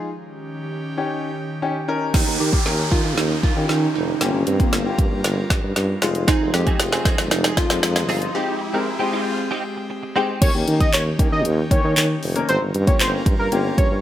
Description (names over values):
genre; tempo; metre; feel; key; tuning
dance-pop; 116 BPM; 4/4; straight; unclear; A4 = 440 Hz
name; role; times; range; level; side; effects
warm grand piano; accompaniment; 0.0-13.8 s; Ab3 to Bb4; -26 LUFS; left 4 dB; sidechain pumping
airy breathy pad; sustained chords; 0.0-14.0 s; Eb3 to Bb4; -29 LUFS; equal; chorus, sidechain pumping
glassy wavetable pluck; melody; 2.1-9.9 s; Bb3 to G4; -25 LUFS; right 2 dB; chorus
warm tuba; bass; 2.1-14.0 s; F1 to Eb3; -23 LUFS; right 1 dB; sidechain pumping
deep house drum kit; drums; 2.1-13.9 s; crash cymbal, handclaps, hi-hat, kick drum, snare drum; -20 LUFS; equal; none
riser and downlifter; sound effects; 2.1-9.4 s; none; -29 LUFS; right 1 dB; none
direct-recorded clean electric guitar; riff; 6.3-10.5 s; C4 to Ab4; -27 LUFS; right 4 dB; ensemble chorus
fat analog lead; melody; 10.4-14.0 s; Bb4 to Eb5; -23 LUFS; equal; sidechain pumping, digital delay
room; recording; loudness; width
light reverb, digital ambience; bright 1980s-style digital production; -18 LUFS; side -12 dB against mid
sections
0.0-2.1 A section; 2.1-10.4 B section; 10.4-14.0 C section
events
break 0.1-2.1, 8.3-10.4; build-up 2.1-10.4; drum fill 2.1-8.3; riser 2.1-10.4; drop 10.4-14.0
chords
0.1 Eb7; 4.2 Gm7b5; 6.0 Fm7; 8.3 Abmaj7; 10.4 Eb7; 12.5 Gm7b5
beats
| 0.07 0.59 1.11 1.62 | 2.14 2.66 3.18 3.69 | 4.21 4.73 5.25 5.76 | 6.28 6.80 7.31 7.83 | 8.35 8.87 9.38 9.90 | 10.42 10.94 11.45 11.97 | 12.49 13.00 13.52